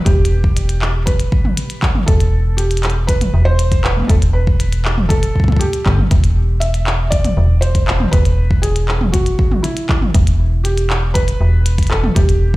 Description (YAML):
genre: IDM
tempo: 119 BPM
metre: 4/4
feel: straight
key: E minor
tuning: A4 = 440 Hz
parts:
  - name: felt-muted upright piano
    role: melody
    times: 0.0-12.6 s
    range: E4 to E5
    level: -23 LUFS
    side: right 1 dB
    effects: ping-pong delay
  - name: metallic FM bass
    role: bass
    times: 0.1-12.6 s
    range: E1 to G1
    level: -15 LUFS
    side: equal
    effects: none
  - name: electronic kick drum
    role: drums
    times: 0.1-12.6 s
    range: none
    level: -15 LUFS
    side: equal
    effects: studio reverb
  - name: glitchy drum kit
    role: drums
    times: 0.1-12.4 s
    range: handclaps, hi-hat, toms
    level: -21 LUFS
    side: equal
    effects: studio reverb
room: digital ambience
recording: played on a big sound system in a bare room, large studio reverb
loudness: -12 LUFS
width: side -19 dB against mid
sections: 0.0-12.6 A section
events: none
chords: 0.0 Em; 6.1 N.C.